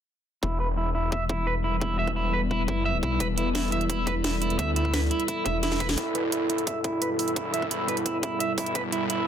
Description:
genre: dark technical drum and bass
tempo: 173 BPM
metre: 4/4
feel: straight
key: E minor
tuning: A4 = 440 Hz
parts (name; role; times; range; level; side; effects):
- dark analog pad; sustained chords; 1.4-9.3 s; G3 to B4; -34 LUFS; left 2 dB; chorus, sidechain pumping
- electric guitar at the edge of break-up; arpeggios; 0.4-9.3 s; E4 to E5; -29 LUFS; right 2 dB; sidechain pumping, low-pass filter, ping-pong delay
- wide detuned saw bass; bass; 0.4-9.3 s; E1 to D2; -29 LUFS; left 1 dB; chorus, tube saturation, high-pass filter
- electronic kick drum; drums; 0.4-8.8 s; none; -32 LUFS; left 1 dB; overdrive, high-pass filter on kick
- warbly tape-like pad; texture; 0.4-9.3 s; E4 to D5; -32 LUFS; right 2 dB; chorus, built-in reverb, sidechain pumping
- drum and bass drum kit; drums; 3.2-9.2 s; hi-hat, snare drum; -30 LUFS; right 2 dB; overdrive, high-pass filter on hats, high-pass filter on snare
- swell; sound effects; 5.4-6.0 s; none; -36 LUFS; right 2 dB; none
room: light reverb, digital ambience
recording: dense, heavily limited modern master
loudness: -24 LUFS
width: side -9 dB against mid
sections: 0.4-6.0 A section; 6.0-9.3 B section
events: fade-in on ambient pad 0.4-6.0; filter sweep on clean electric guitar 0.4-6.0, 6.0-9.3; swell 5.4-6.0; drum fill 5.6-6.0; build-up 6.0-9.3; filter sweep on analog synth pad 6.0-9.3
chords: 0.4 Em

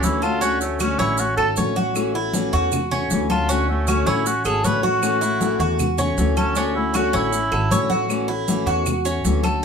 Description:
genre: latin, Cuban son and guajira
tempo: 156 BPM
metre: 4/4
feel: straight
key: A major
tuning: A4 = 441 Hz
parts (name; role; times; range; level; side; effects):
- warm cor anglais; melody; 0.0-8.1 s; A3 to B4; -23 LUFS; right 1 dB; none
- fingerpicked steel-string acoustic guitar; accompaniment; 0.0-9.6 s; D3 to F#4; -24 LUFS; left 4 dB; none
- Cuban tres; arpeggios; 0.0-9.6 s; C#4 to C#5; -24 LUFS; right 1 dB; none
- upright bass; bass; 0.0-9.6 s; G#1 to E2; -25 LUFS; equal; none
- congas; percussion; 0.0-9.6 s; none; -27 LUFS; left 1 dB; none
- maracas; percussion; 0.0-9.6 s; none; -31 LUFS; right 6 dB; none
- claves; percussion; 0.2-9.6 s; none; -34 LUFS; right 1 dB; none
room: wet studio ambience, RT60 0.5 s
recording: band playing live in one room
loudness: -18 LUFS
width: side -6 dB against mid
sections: 0.0-9.6 A section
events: cor anglais solo 0.0-9.6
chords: 0.4 Dmaj7; 2.0 A6; 3.5 Dmaj7; 5.0 A6; 6.6 Dmaj7; 8.1 A6

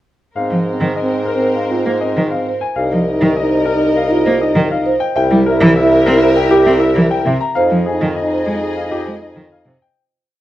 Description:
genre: classical, minimalist pattern music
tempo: 100 BPM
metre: 4/4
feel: straight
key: Ab major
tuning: A4 = 439 Hz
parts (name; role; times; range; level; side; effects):
- clear baby grand piano; melody; 0.4-10.0 s; G4 to Bb5; -21 LUFS; left 5 dB; none
- warm French horn; second line; 0.4-9.7 s; C4 to E4; -19 LUFS; right 1 dB; none
- rich symphonic string section; sustained chords; 0.4-9.8 s; Ab4 to E5; -24 LUFS; left 2 dB; none
- clear bassoon; bass; 0.4-9.8 s; C2 to Ab2; -18 LUFS; equal; none
- rich cello; accompaniment; 0.5-9.8 s; C3 to C4; -16 LUFS; equal; none
- marimba with soft mallets; arpeggios; 1.1-9.9 s; Eb4 to E5; -19 LUFS; right 3 dB; none
room: light reverb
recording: worn, warbling old tape, cassette tape, warbly pitch drift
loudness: -12 LUFS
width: side -14 dB against mid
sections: 0.4-10.0 A section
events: fade-out 7.6-10.0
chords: 0.4 Abadd9; 2.8 Cm7; 5.2 C7; 7.6 Fm7

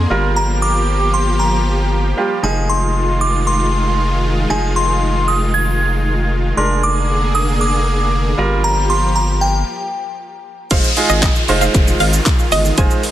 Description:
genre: dance-pop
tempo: 116 BPM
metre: 4/4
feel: straight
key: F dorian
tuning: A4 = 445 Hz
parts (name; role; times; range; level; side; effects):
- glassy synth bell; melody; 0.0-10.2 s; G5 to Ab6; -19 LUFS; equal; chorus, tape echo
- bright grand piano; accompaniment; 0.0-13.0 s; F3 to C5; -22 LUFS; right 3 dB; sidechain pumping
- supersaw pad; sustained chords; 0.0-13.1 s; D3 to Ab4; -22 LUFS; equal; sidechain pumping
- round analog bass; bass; 0.0-12.9 s; F1 to Ab1; -18 LUFS; equal; sidechain pumping
- wide unison pluck; melody; 10.7-13.0 s; Eb5 to Ab5; -20 LUFS; right 2 dB; sidechain pumping, tape echo
- pop drum kit; drums; 10.7-13.1 s; crash cymbal, handclaps, hi-hat, kick drum, shaker; -15 LUFS; equal; none
- downlifter; sound effects; 10.7-13.1 s; none; -22 LUFS; equal; none
room: light reverb, digital ambience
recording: none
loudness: -13 LUFS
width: side -12 dB against mid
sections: 0.0-10.7 A section; 10.7-13.1 B section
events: stop 9.7-10.7; drop 10.7-13.1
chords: 0.1 Gm7; 2.4 Fm7; 6.6 Bb7/F; 8.4 Gm7; 9.7 N.C.; 10.7 Fm7

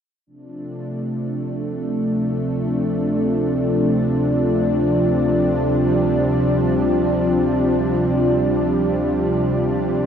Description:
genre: ambient, sequencer-driven space music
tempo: free time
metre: none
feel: none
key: unclear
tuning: A4 = 441 Hz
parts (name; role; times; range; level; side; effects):
- lush unison pad; sustained chords; 0.3-10.1 s; C3 to D4; -17 LUFS; equal; chorus, shimmer reverb
- round analog bass; bass; 0.3-10.1 s; D2; -34 LUFS; equal; none
room: wet huge ambient reverb, RT60 7.4 s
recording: dark, warm production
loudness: -17 LUFS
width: side -8 dB against mid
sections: 0.3-10.1 A section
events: fade-in on analog synth bass 0.3-10.1; filter sweep on analog synth pad 0.3-10.1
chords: 0.3 Dm7

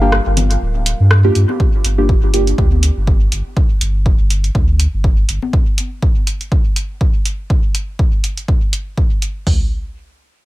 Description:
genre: dub techno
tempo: 122 BPM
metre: 4/4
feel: swing 56% on 16ths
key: G minor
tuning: A4 = 440 Hz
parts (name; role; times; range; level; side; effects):
- dark analog pad; sustained chords; 0.0-1.6 s; G3 to F5; -26 LUFS; right 1 dB; chorus, sidechain pumping
- deep mellow chord stab; stabs; 0.0-2.6 s; Bb3 to G4; -19 LUFS; right 1 dB; chorus, phaser, sidechain pumping, dub echo
- pure sine sub bass; bass; 0.0-5.4 s; D1 to G2; -14 LUFS; equal; sidechain pumping
- punchy analog drum machine; drums; 0.1-9.3 s; hi-hat, rim click; -20 LUFS; equal; dub echo
- congas; percussion; 0.4-5.5 s; none; -26 LUFS; left 6 dB; overdrive, sidechain pumping on perc, dub echo
- punchy analog drum machine; drums; 1.6-9.6 s; hi-hat, kick drum, toms; -15 LUFS; equal; none
room: digital ambience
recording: echo-heavy mix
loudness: -13 LUFS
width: side -17 dB against mid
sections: 0.0-1.6 A section; 1.6-9.5 B section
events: break 0.0-1.6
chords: 0.0 Gm7; 9.5 N.C.

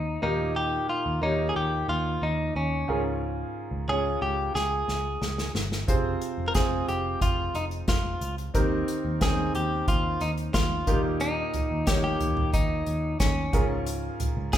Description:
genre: piano-driven pop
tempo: 90 BPM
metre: 4/4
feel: straight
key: unclear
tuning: A4 = 440 Hz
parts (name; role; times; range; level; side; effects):
- direct-recorded clean electric guitar; melody; 0.0-14.6 s; Db4 to Bb4; -29 LUFS; equal; none
- clear concert grand piano; accompaniment; 0.0-14.6 s; Ab2 to G5; -31 LUFS; right 1 dB; none
- vintage muted picked electric bass; bass; 0.0-14.6 s; F1 to Eb2; -31 LUFS; equal; none
- unplugged drum kit; drums; 4.6-14.6 s; hi-hat, kick drum, snare drum, toms; -27 LUFS; equal; none
room: moderate large studio reverb, RT60 1.1 s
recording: band playing live in one room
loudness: -24 LUFS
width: side -11 dB against mid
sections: 0.0-14.6 A section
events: drum fill 4.5-5.9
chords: 0.2 Eb; 2.9 Db6; 5.9 Fm; 8.5 Cm7/Eb; 10.9 Eb; 13.5 Db6

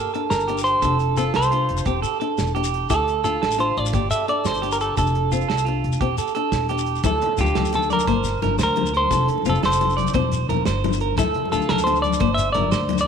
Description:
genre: highlife guitar band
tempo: 116 BPM (dotted quarters)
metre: 12/8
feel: straight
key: D minor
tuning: A4 = 437 Hz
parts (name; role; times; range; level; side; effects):
- semi-hollow electric guitar; melody; 0.0-13.1 s; G4 to E5; -23 LUFS; left 1 dB; spring reverb
- nylon-string guitar; accompaniment; 0.0-13.1 s; Bb3 to E4; -29 LUFS; left 11 dB; none
- clean electric guitar; arpeggios; 0.0-13.0 s; F4 to D5; -25 LUFS; right 10 dB; spring reverb, slapback echo
- warm soul drum kit; drums; 0.1-13.0 s; hi-hat, kick drum, snare drum; -29 LUFS; right 3 dB; none
- upright bass; bass; 0.3-13.1 s; E1 to D2; -25 LUFS; equal; none
- shekere; percussion; 0.3-13.1 s; none; -31 LUFS; left 6 dB; none
- congas; percussion; 7.0-13.1 s; none; -27 LUFS; left 11 dB; none
room: moderate echo chamber reverb, RT60 1.4 s, studio reverb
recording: 1960s-style stereo with parts hard left and right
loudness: -18 LUFS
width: side -7 dB against mid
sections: 0.0-7.0 A section; 7.0-13.1 B section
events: none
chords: 0.0 Gmadd9; 0.8 F; 1.9 Cadd9/E; 2.9 Dm; 3.9 Gmadd9; 5.0 F; 6.0 Cadd9/E; 7.0 Dm; 8.1 Gm; 9.1 F; 10.1 Cadd9/E; 11.2 Dm; 12.2 Gm

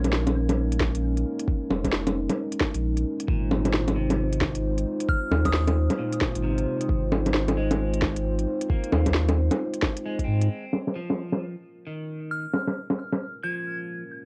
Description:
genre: future garage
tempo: 133 BPM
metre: 4/4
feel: swing 62% on 16ths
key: Bb minor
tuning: A4 = 440 Hz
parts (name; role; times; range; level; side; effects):
- dark analog pad; sustained chords; 0.0-14.3 s; Ab3 to C5; -33 LUFS; equal; chorus, vintage 12-bit sampler grit, sidechain pumping, cassette tape
- warm sub bass; bass; 0.0-10.5 s; F1 to Ab2; -28 LUFS; equal; sidechain pumping
- organic electronic drum kit; drums; 0.0-13.2 s; bongos, hi-hat, snare drum; -28 LUFS; equal; low-pass filter on hats, cassette tape, low-pass filter on perc, low-pass filter on snare, low-pass filter on room
- electronic kick drum; drums; 0.8-10.3 s; none; -30 LUFS; equal; overdrive, cassette tape
- electric guitar at the edge of break-up; accompaniment; 3.3-14.0 s; Bb2 to C4; -38 LUFS; equal; subtle chorus, sidechain pumping, cassette tape, analog delay
- glassy synth bell; melody; 5.1-5.6, 12.3-13.9 s; Eb6 to Ab6; -35 LUFS; equal; chorus, cassette tape, analog delay
room: moderate studio reverb, RT60 0.6 s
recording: home recording on cassette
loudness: -26 LUFS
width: mono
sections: 0.0-10.5 A section; 10.5-14.3 B section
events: filter sweep on drum 10.5-14.3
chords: 0.0 Bbm7; 3.3 Fm7/Ab; 10.5 Bbm7

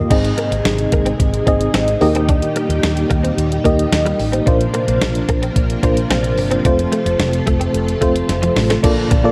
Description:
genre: 1980s-style pop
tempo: 110 BPM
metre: 4/4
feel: straight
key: unclear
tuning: A4 = 436 Hz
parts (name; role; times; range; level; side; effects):
- FM electric piano with tremolo; accompaniment; 0.0-9.3 s; Ab2 to Eb5; -20 LUFS; equal; none
- direct-recorded clean electric guitar; riff; 0.0-9.3 s; F3 to D4; -27 LUFS; equal; ensemble chorus, digital delay
- woody fretless electric bass; bass; 0.0-9.3 s; F1 to Eb2; -23 LUFS; equal; none
- string machine, violins; sustained chords; 0.1-9.3 s; Bb2 to A4; -26 LUFS; equal; ensemble chorus
- clean 12-bit digital drum machine; drums; 0.1-9.2 s; crash cymbal, hi-hat, kick drum, snare drum; -21 LUFS; equal; none
room: light reverb, digital ambience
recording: none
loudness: -16 LUFS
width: mono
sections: 0.1-8.8 A section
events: drum fill 8.3-8.8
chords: 0.1 Ab; 2.0 Eb; 4.5 Bbadd9; 6.7 F

